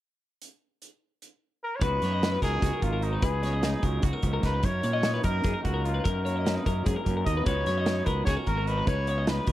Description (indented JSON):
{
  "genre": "math rock and midwest emo",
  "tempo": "297 BPM (eighths)",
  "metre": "7/8",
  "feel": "straight",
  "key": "unclear",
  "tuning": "A4 = 439 Hz",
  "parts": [
    { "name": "loose indie drum kit", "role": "drums", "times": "0.4-9.5 s", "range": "hi-hat, kick drum, snare drum", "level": "-29 LUFS", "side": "equal", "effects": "none" },
    { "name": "warm trumpet", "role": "melody", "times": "1.6-9.5 s", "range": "D#4 to D#5", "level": "-32 LUFS", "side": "equal", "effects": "slapback echo" },
    { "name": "electric guitar through a small old amp", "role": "accompaniment", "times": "1.8-9.5 s", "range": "F#2 to F#4", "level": "-36 LUFS", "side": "right 6 dB", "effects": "none" },
    { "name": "twelve-string electric guitar", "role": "arpeggios", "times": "1.8-9.5 s", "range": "G#4 to D#5", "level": "-33 LUFS", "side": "left 6 dB", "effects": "spring reverb" },
    { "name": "fuzz fingered electric bass", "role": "bass", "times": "1.8-9.5 s", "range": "G#1 to A#2", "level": "-29 LUFS", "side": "equal", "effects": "overdrive" }
  ],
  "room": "little or no reverb",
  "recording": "none",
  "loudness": "-24 LUFS",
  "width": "side -14 dB against mid",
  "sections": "0.4-1.8 A section; 1.8-9.5 B section",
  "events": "none",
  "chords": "0.4 N.C.; 1.8 C#9sus4; 4.6 F#6; 7.5 C#9sus4"
}